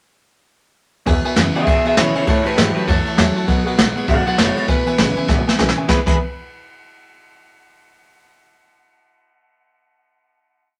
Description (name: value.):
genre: rockabilly.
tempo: 199 BPM.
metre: 4/4.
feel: swing 60% on 8ths.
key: E major.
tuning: A4 = 440 Hz.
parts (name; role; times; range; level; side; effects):
picked steel-string acoustic guitar; accompaniment; 1.1-6.2 s; E2 to F#4; -28 LUFS; equal; none.
tack piano; accompaniment; 1.1-6.2 s; B4 to A5; -29 LUFS; equal; none.
clean electric guitar; riff; 1.1-6.2 s; E2 to G#4; -25 LUFS; equal; none.
upright bass; bass; 1.1-6.2 s; E1 to B2; -26 LUFS; equal; none.
jazz brush drum kit; drums; 1.1-6.1 s; crash cymbal, kick drum, ride cymbal, snare drum; -20 LUFS; equal; none.
electric guitar through a small old amp; melody; 1.6-6.2 s; E4 to F#5; -23 LUFS; equal; spring reverb.
room: light reverb.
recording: none.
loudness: -17 LUFS.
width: mono.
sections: 1.1-5.9 A section; 5.9-7.1 final chord.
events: drum fill 5.3-5.9.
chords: 1.1 E; 2.3 A; 3.5 B7; 4.7 E.